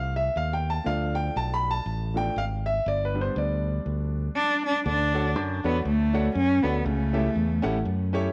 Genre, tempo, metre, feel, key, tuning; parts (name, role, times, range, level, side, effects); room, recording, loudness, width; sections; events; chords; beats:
uptempo gospel; 120 BPM; 4/4; swing 57% on 8ths; D major from 4.9 s; A4 = 440 Hz
warm grand piano; accompaniment; 0.0-8.3 s; C#3 to B5; -31 LUFS; equal
fingered electric bass; bass; 0.0-8.3 s; G1 to F#2; -30 LUFS; equal
dark cello; melody; 4.4-7.8 s; A3 to D4; -27 LUFS; equal; tape echo
light reverb, studio ambience; -26 LUFS; mono
0.0-4.9 A section; 4.9-8.3 B section
grand piano solo 0.0-4.9
0.0 F; 0.9 Dm; 2.9 G; 4.9 Dmaj7; 6.8 A7
0.36 | 0.86 1.36 1.86 2.36 | 2.86 3.35 3.85 4.35 | 4.85 5.35 5.85 6.35 | 6.85 7.35 7.84